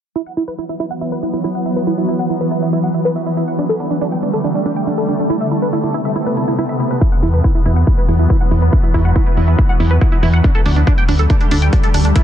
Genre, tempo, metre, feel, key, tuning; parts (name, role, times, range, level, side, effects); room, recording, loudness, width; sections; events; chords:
uplifting trance; 140 BPM; 4/4; straight; E minor; A4 = 440 Hz
shimmering ambient pad; sustained chords; 0.6-12.2 s; C3 to B3; -19 LUFS; equal; chorus, built-in reverb, sidechain pumping
tight sequenced synth; arpeggios; 0.2-12.2 s; D4 to G5; -21 LUFS; right 2 dB; chorus, phaser, sidechain pumping, dub echo
electronic hi-hat; drums; 0.2-12.2 s; -30 LUFS; equal; sidechain pumping on hats
electronic kick drum; drums; 7.0-12.2 s; -14 LUFS; equal
solid FM bass; bass; 7.2-12.1 s; D2 to E2; -13 LUFS; equal; tube saturation, sidechain pumping
noise sweep; sound effects; 12.2 s; barely audible
little or no reverb; dense, heavily limited modern master, low-pass filter; -13 LUFS; side -10 dB against mid
0.2-12.2 A section
filter sweep on synth arpeggio sound 0.2-12.2; filter sweep 0.2-12.2
0.2 Esus2; 3.6 Dsus4; 5.3 Amadd9; 7.0 Esus2; 10.4 Dsus4